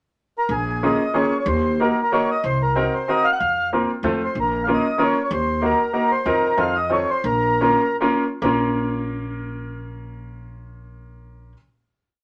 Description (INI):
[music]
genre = musette waltz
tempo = 133-190 BPM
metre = 3/4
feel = straight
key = Bb minor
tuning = A4 = 444 Hz
[part]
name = mellow accordion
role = melody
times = 0.4-8.0 s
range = Ab4 to Gb5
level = -23 LUFS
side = equal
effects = none
[part]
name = upright bass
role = bass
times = 0.5-11.5 s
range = Bb1 to F2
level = -29 LUFS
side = equal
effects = none
[part]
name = bright upright piano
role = accompaniment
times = 0.8-11.6 s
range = A3 to Bb4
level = -24 LUFS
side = equal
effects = none
[sound]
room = wet club reverb, RT60 0.5 s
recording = none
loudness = -21 LUFS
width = mono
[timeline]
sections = 0.0-0.5 pickup bar; 0.5-8.4 A section; 8.4-11.1 final chord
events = slowing down 6.3-8.4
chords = 0.0 N.C.; 0.5 Bbm7; 1.5 Ebm; 2.4 Cm7b5; 3.4 Fsus4; 4.0 F; 4.4 Bbm; 5.3 Ebm; 6.3 F7sus4; 6.6 F7; 7.2 Bbm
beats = 0.18 | 0.50 0.83 1.15 | 1.47 1.80 2.12 | 2.44 2.76 3.08 | 3.40 3.71 4.03 | 4.35 4.67 4.99 | 5.31 5.62 5.94 | 6.26 6.58 6.90 | 7.24 7.60 8.00 | 8.43 8.88 9.33 | 9.78 10.22 10.67